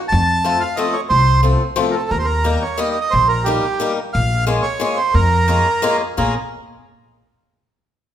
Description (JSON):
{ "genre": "musette waltz", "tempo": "178 BPM", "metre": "3/4", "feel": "straight", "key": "Bb minor", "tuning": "A4 = 440 Hz", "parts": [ { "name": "bandoneon", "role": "melody", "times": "0.1-6.3 s", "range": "G4 to A5", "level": "-18 LUFS", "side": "right 3 dB", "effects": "none" }, { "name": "upright bass", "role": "bass", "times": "0.1-6.3 s", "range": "Bb1 to F2", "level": "-18 LUFS", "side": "equal", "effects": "none" }, { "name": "picked swing-style acoustic guitar", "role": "accompaniment", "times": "0.4-6.3 s", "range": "F3 to Bb4", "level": "-21 LUFS", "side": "left 4 dB", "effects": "none" } ], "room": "moderate recital hall reverb, RT60 1.3 s", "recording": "minimal, uncompressed stereo recording", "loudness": "-15 LUFS", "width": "side -10 dB against mid", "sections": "0.0-6.2 A section; 6.2-7.2 B section", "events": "none", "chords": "0.1 F; 2.1 Eb; 4.1 Bbm7" }